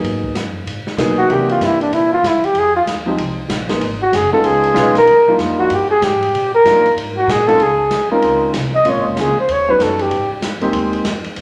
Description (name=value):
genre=jazz, small-group swing and bop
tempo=190 BPM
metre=4/4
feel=swing 62% on 8ths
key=unclear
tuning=A4 = 440 Hz
part: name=warm concert grand piano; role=accompaniment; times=0.0-11.0 s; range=E3 to Ab4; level=-22 LUFS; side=equal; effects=none
part: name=upright bass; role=bass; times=0.0-11.4 s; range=F1 to C3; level=-29 LUFS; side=equal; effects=none
part: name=swinging big-band drum kit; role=drums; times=0.0-11.4 s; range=hi-hat, kick drum, ride cymbal, snare drum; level=-27 LUFS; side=equal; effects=none
part: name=mellow flugelhorn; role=melody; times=1.2-10.3 s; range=D4 to Eb5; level=-15 LUFS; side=equal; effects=none
room=moderate large studio reverb, RT60 1.3 s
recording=none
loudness=-15 LUFS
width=mono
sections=0.0-7.6 A section; 7.6-11.4 A section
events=flugelhorn solo 0.0-11.4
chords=0.0 Abm9; 1.3 C7; 2.6 Fm7; 3.8 Abm7; 4.4 Db9; 5.1 Ebmaj9; 7.0 Ab69; 7.6 Dbmaj7; 8.9 Bbm7; 9.5 Eb7alt; 10.1 Abmaj7